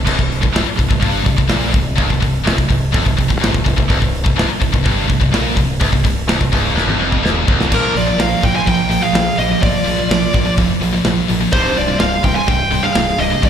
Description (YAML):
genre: heavy metal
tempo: 126 BPM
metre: 4/4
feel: straight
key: C minor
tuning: A4 = 438 Hz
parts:
  - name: heavy high-gain guitar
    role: riff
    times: 0.0-13.5 s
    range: C2 to Bb3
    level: -20 LUFS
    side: left 11 dB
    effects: distortion, slapback echo
  - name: tight distorted guitar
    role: riff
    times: 0.0-13.5 s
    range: C2 to Bb3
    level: -20 LUFS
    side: right 10 dB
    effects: distortion
  - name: growling fingered electric bass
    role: bass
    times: 0.0-13.5 s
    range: C1 to Bb1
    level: -21 LUFS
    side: equal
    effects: overdrive
  - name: modern studio drum kit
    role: drums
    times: 0.1-13.5 s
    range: crash cymbal, hi-hat, kick drum, snare drum, toms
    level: -18 LUFS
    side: equal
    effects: none
  - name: high-gain lead guitar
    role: melody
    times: 7.7-13.5 s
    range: Bb4 to Ab5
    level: -18 LUFS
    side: equal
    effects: distortion, slapback echo, digital delay
  - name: high-gain lead guitar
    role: second line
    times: 7.7-13.5 s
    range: D4 to C5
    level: -28 LUFS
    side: right 4 dB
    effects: distortion, slapback echo
room: studio reverb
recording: live gig heard through the venue's PA, recital hall reverb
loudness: -13 LUFS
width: side -8 dB against mid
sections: 0.0-7.7 A section; 7.7-13.5 B section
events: drum fill 6.8-7.7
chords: 0.0 Cm; 7.7 Bb; 11.5 C5